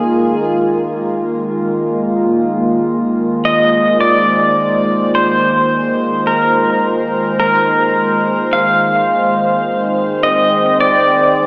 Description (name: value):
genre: ambient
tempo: 53 BPM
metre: 3/4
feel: straight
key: Bb mixolydian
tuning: A4 = 439 Hz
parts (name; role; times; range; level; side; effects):
- pedal steel guitar; melody; 0.0-11.5 s; Ab4 to F5; -13 LUFS; equal; shimmer reverb, analog delay
- warbly tape-like pad; sustained chords; 0.0-11.5 s; Eb3 to G5; -15 LUFS; equal; chorus, built-in reverb, shimmer reverb
room: wet echo chamber reverb, RT60 2.5 s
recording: echo-heavy mix, small speaker sound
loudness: -11 LUFS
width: side -29 dB against mid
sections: 0.0-11.5 A section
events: none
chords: 0.0 Bb7sus4; 8.5 Abmaj7